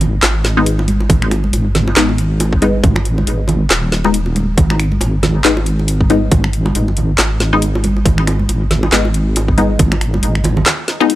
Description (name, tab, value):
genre	deep dubstep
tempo	138 BPM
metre	4/4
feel	swing 57% on 16ths, half-time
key	G# minor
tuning	A4 = 441 Hz
part	deep soft wobble bass	bass	0.0-10.6 s	D#1 to G#1	-15 LUFS	equal	chorus
part	garage drum kit	drums	0.0-11.2 s	finger snaps, handclaps, hi-hat, snare drum	-16 LUFS	equal	none
part	congas and bongos	percussion	0.0-11.1 s	none	-20 LUFS	right 2 dB	dub echo
part	filtered dub chord stab	stabs	0.6-11.1 s	G#3 to D#4	-18 LUFS	left 3 dB	phaser, dub echo
part	electronic kick drum	drums	1.1-9.9 s	none	-13 LUFS	equal	none
room	digital ambience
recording	dry, gritty hardware recording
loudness	-12 LUFS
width	side -15 dB against mid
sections	0.0-11.2 A section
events	none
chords	0.0 G#m